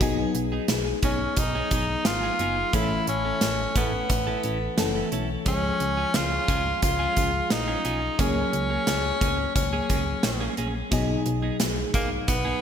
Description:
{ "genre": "1980s-style pop", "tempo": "88 BPM", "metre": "4/4", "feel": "straight", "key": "unclear", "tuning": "A4 = 440 Hz", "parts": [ { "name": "FM electric piano", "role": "accompaniment", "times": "0.0-12.6 s", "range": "Cb3 to A4", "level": "-30 LUFS", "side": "left 3 dB", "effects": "chorus, phaser" }, { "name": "clean electric guitar", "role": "riff", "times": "0.0-12.6 s", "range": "Bb3 to A4", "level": "-34 LUFS", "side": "right 4 dB", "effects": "wide subtle chorus" }, { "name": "solid FM bass", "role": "bass", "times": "0.0-12.5 s", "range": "Gb1 to Db2", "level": "-31 LUFS", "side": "equal", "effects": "none" }, { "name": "gated 80s drum kit", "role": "drums", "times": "0.0-12.4 s", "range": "hi-hat, kick drum, snare drum", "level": "-27 LUFS", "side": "equal", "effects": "none" }, { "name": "bright tenor saxophone", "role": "melody", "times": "1.0-12.6 s", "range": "Bb3 to F4", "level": "-27 LUFS", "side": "left 1 dB", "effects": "none" } ], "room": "moderate lush hall reverb, RT60 2.2 s", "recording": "bright 1980s-style digital production", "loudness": "-22 LUFS", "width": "side -8 dB against mid", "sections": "0.0-12.6 A section", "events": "none", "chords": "0.0 Cb6; 2.7 A; 5.5 Db; 8.2 Gbadd9/Db; 10.9 Cb6" }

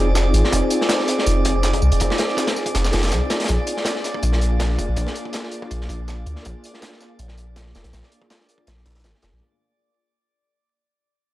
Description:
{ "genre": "drum and bass, jungle", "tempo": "162 BPM", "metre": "4/4", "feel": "straight", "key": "unclear", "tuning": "A4 = 441 Hz", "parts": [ { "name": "soft string machine", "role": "sustained chords", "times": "0.0-9.4 s", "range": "Bb3 to Ab4", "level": "-25 LUFS", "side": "equal", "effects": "ensemble chorus" }, { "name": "soft dub sub bass", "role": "bass", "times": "0.0-9.4 s", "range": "F1 to D2", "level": "-20 LUFS", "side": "equal", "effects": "none" }, { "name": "drifting glass-harmonics texture", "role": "texture", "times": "0.0-9.4 s", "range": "D5 to D6", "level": "-29 LUFS", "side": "right 1 dB", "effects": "chorus, built-in reverb" }, { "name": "electronic snare drum and tambourine", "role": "drums", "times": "0.2-9.3 s", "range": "none", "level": "-28 LUFS", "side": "right 1 dB", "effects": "high-pass filter on snare, high-pass filter on perc" }, { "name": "crunchy breakbeat drum kit", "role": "drums", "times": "0.3-9.4 s", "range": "hi-hat, kick drum, snare drum", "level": "-25 LUFS", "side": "equal", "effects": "high-pass filter on kick, high-pass filter on hats, high-pass filter on snare, high-pass filter on room" } ], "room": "little or no reverb", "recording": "dry, gritty hardware recording, transformer saturation, vinyl crackle", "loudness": "-18 LUFS", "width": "side -15 dB against mid", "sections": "0.0-9.4 A section", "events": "fade-out 0.0-9.4", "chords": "0.0 Fm7; 3.5 Bb7" }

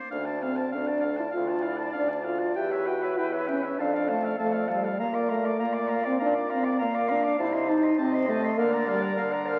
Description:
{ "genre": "quick classical-period movement for wind quintet", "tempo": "99 BPM", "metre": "4/4", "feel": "rubato", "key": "D minor", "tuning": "A4 = 440 Hz", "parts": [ { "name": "clear oboe", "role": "second line", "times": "0.0-9.6 s", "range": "C5 to D6", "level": "-38 LUFS", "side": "equal", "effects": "none" }, { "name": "dark clarinet", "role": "accompaniment", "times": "0.1-9.6 s", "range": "A4 to F5", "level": "-35 LUFS", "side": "equal", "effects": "none" }, { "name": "warm French horn", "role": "accompaniment", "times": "0.1-9.2 s", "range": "G3 to G4", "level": "-30 LUFS", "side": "equal", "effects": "none" }, { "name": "warm bassoon", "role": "bass", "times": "0.1-9.6 s", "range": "D2 to D3", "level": "-35 LUFS", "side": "equal", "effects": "none" }, { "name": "bright concert flute", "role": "melody", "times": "1.3-9.5 s", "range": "A4 to F5", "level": "-37 LUFS", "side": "equal", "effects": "none" } ], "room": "wet recital hall reverb, RT60 1.6 s", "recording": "very old 78 rpm record, vinyl crackle", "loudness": "-27 LUFS", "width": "mono", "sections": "0.1-9.6 A section", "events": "none", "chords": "0.1 Dm; 2.6 C#dim/E; 3.8 Dm/F; 5.0 Bb; 7.4 Adim/C; 8.6 Bb/D" }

